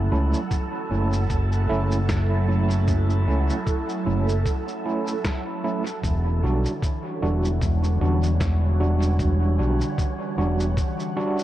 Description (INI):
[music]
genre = ambient dub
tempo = 76 BPM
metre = 4/4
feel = swing 56% on 16ths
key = E dorian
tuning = A4 = 440 Hz
[part]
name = airy breathy pad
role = sustained chords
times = 0.0-11.4 s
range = D3 to F#5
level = -30 LUFS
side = right 1 dB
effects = chorus, phaser
[part]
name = overdriven tine electric piano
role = stabs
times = 0.0-11.4 s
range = G3 to F#4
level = -28 LUFS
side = right 2 dB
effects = medium tremolo, dub echo
[part]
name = overdriven fingered electric bass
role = bass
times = 0.0-10.7 s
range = E1 to C#2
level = -21 LUFS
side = equal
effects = none
[part]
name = wind-like tuned noise texture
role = texture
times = 0.0-11.4 s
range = C#4 to A5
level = -37 LUFS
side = right 1 dB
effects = built-in reverb
[part]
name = electronic cabasa and snare drum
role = drums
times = 0.3-11.4 s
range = none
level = -36 LUFS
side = equal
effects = dub echo
[part]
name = electronic kick drum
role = drums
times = 0.5-10.9 s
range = none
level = -26 LUFS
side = equal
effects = none
[sound]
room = light reverb, digital ambience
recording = none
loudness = -21 LUFS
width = side -14 dB against mid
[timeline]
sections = 0.0-11.4 A section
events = none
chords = 0.0 F#m7; 6.0 Em9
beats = 0.51 1.30 2.09 | 2.88 3.67 4.46 5.25 | 6.04 6.83 7.62 8.41 | 9.20 9.99 10.78